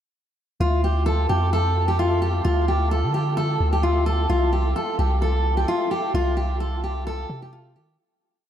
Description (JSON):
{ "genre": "hip hop, trap", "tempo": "130 BPM", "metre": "4/4", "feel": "half-time", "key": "D phrygian", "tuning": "A4 = 440 Hz", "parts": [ { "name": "fingerpicked steel-string acoustic guitar", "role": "melody", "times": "0.6-8.0 s", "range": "F4 to A4", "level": "-23 LUFS", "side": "equal", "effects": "diffuse ambient delay" }, { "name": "long sustained 808-style bass", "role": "bass", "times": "0.6-8.0 s", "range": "C2 to Eb3", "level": "-22 LUFS", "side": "equal", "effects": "none" } ], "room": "wet huge ambient reverb, RT60 8.1 s", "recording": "dreamy mix soaked in reverb", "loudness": "-20 LUFS", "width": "side -10 dB against mid", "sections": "0.6-8.0 verse", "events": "fade-out 6.1-8.0", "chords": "0.6 Dm; 4.3 C5", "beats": "| 0.60 1.06 1.53 1.99 | 2.45 2.91 3.37 3.83 | 4.30 4.76 5.22 5.68 | 6.14 6.60 7.07 7.53" }